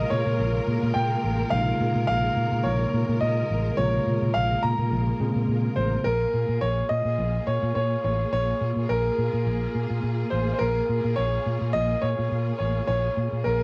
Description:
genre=disco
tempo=106 BPM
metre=4/4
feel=straight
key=Bb minor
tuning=A4 = 440 Hz
part: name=clear concert grand piano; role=melody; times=0.0-13.6 s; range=Bb4 to Bb5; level=-29 LUFS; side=equal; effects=cassette tape
part: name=tine electric piano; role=accompaniment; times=0.0-6.1 s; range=C3 to Ab4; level=-31 LUFS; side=equal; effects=cassette tape
part: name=clear symphonic string section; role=sustained chords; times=0.0-13.6 s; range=Bb3 to Bb4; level=-35 LUFS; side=equal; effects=cassette tape
part: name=fingered electric bass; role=bass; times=0.0-13.6 s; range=A1 to Bb2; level=-28 LUFS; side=equal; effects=none
room=light reverb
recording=home recording on cassette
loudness=-25 LUFS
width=mono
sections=0.0-6.1 A section; 6.1-13.6 B section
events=none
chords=0.0 Bbm7

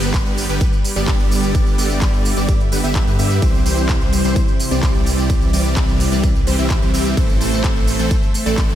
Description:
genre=EDM, festival progressive house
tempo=128 BPM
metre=4/4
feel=straight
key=G major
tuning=A4 = 440 Hz
part: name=lush unison pad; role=sustained chords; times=0.0-8.8 s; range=C3 to E5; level=-25 LUFS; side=right 2 dB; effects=chorus, sidechain pumping
part: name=supersaw chords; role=riff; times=0.0-8.8 s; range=D3 to E5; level=-21 LUFS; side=equal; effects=sidechain pumping, analog delay
part: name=wide detuned saw bass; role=bass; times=0.0-8.8 s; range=G1 to G2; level=-21 LUFS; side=equal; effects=chorus, sidechain pumping
part: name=big-room dance drum kit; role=drums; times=0.0-8.8 s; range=handclaps, hi-hat, ride cymbal, tambourine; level=-26 LUFS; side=right 1 dB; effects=none
part: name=electronic kick drum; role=drums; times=0.1-8.7 s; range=none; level=-17 LUFS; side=equal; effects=none
room=light reverb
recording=none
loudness=-14 LUFS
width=side -11 dB against mid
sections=0.0-8.8 A section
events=none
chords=0.0 G; 3.4 C; 7.2 Am

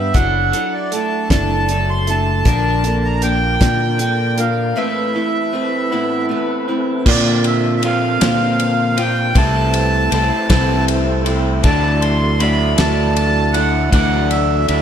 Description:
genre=folk rock and heartland rock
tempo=52 BPM (dotted quarters)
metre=6/8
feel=straight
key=unclear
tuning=A4 = 439 Hz
part: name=accordion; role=melody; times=0.0-14.8 s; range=D5 to C6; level=-20 LUFS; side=right 2 dB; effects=tape echo
part: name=picked steel-string acoustic guitar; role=accompaniment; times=0.0-14.8 s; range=A2 to D5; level=-23 LUFS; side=left 4 dB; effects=wide subtle chorus
part: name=electric guitar through a small old amp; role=riff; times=0.0-14.8 s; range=A2 to F4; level=-22 LUFS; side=right 3 dB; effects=lush chorus
part: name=fingered electric bass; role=bass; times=0.0-14.8 s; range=F#1 to Bb2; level=-18 LUFS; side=equal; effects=none
part: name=damped 70s drum kit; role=drums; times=0.1-14.8 s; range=crash cymbal, hi-hat, kick drum, ride cymbal, snare drum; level=-20 LUFS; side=equal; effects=none
part: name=tonewheel organ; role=sustained chords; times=2.5-14.8 s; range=C4 to D5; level=-29 LUFS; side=right 1 dB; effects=slow rotary speaker, overdrive, chorus vibrato
room=moderate lush hall reverb, RT60 2.0 s, small room ambience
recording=dreamy mix soaked in reverb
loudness=-14 LUFS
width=side -8 dB against mid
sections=0.0-7.1 A section; 7.1-14.8 B section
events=break 4.8-7.1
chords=0.2 Dadd9/F#; 2.5 Bb; 4.8 Amadd9; 7.1 Bbadd9; 9.4 Am/C; 11.6 Dadd9

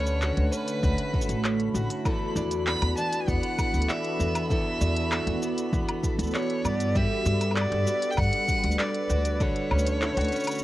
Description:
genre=folktronica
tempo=98 BPM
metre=4/4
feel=straight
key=unclear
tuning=A4 = 441 Hz
part: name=rich violin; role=melody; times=0.0-10.6 s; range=B4 to B5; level=-30 LUFS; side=equal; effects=analog delay
part: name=warbly tape-like pad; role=sustained chords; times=0.0-10.6 s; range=D3 to B4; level=-32 LUFS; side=equal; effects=chorus, built-in reverb, phaser, cassette tape
part: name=picked twelve-string acoustic guitar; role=arpeggios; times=0.0-10.6 s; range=E2 to B4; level=-32 LUFS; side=equal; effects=cassette tape
part: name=upright bass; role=bass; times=0.0-10.3 s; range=A1 to G2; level=-27 LUFS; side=equal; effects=none
part: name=twinkling granular texture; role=texture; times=0.0-10.6 s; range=B5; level=-41 LUFS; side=right 1 dB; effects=built-in reverb, cassette tape, plate reverb
part: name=organic electronic drum kit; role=drums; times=0.1-10.6 s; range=handclaps, hi-hat, shaker, woodblock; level=-32 LUFS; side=equal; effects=cassette tape
part: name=electronic kick drum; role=drums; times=0.8-9.5 s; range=none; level=-28 LUFS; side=equal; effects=cassette tape
room=moderate booth ambience, RT60 0.2 s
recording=home recording on cassette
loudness=-24 LUFS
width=side -16 dB against mid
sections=0.0-10.6 A section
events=none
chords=0.0 Dmaj7; 2.1 E7sus4; 7.0 Gmaj7; 9.4 Dmaj7

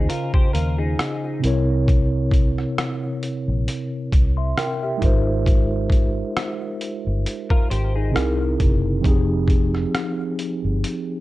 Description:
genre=lo-fi hip hop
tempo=67 BPM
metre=4/4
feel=swing 56% on 16ths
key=unclear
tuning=A4 = 439 Hz
part: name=clean electric guitar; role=second line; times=0.0-1.4, 7.5-8.4 s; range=Eb4 to C5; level=-28 LUFS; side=left 3 dB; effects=analog chorus, low-pass filter, tape echo
part: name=mellow tine electric piano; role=accompaniment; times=0.0-11.2 s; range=C3 to C6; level=-24 LUFS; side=equal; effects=slow stereo tremolo, cassette tape, low-pass filter
part: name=vintage muted fingered electric bass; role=bass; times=0.0-10.8 s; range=F1 to Eb2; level=-22 LUFS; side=equal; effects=none
part: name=trip hop sampler-style drum kit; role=drums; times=0.1-11.1 s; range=hi-hat, kick drum, rim click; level=-20 LUFS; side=equal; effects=none
room=light reverb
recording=none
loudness=-18 LUFS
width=side -17 dB against mid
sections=0.0-11.2 A section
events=none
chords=0.0 Dbmaj9; 1.4 C7b9; 5.0 Ab6; 8.1 C7alt; 9.0 Fm9

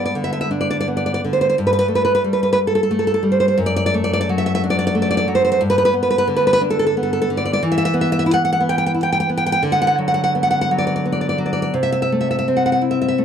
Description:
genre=romantic piece for solo classical guitar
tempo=59 BPM (dotted quarters)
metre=6/8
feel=uneven beats, rubato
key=G major, E minor from 7.6 s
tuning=A4 = 439 Hz
part: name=nylon-string guitar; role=solo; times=0.0-13.2 s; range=F#2 to G5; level=-16 LUFS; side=equal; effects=none
room=light reverb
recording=dark, warm production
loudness=-15 LUFS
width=side -8 dB against mid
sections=0.0-13.2 A section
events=none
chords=0.0 G; 1.5 Gadd9; 3.6 D/F#; 5.6 G; 7.6 E5; 9.6 Bm/D; 11.7 Am/C

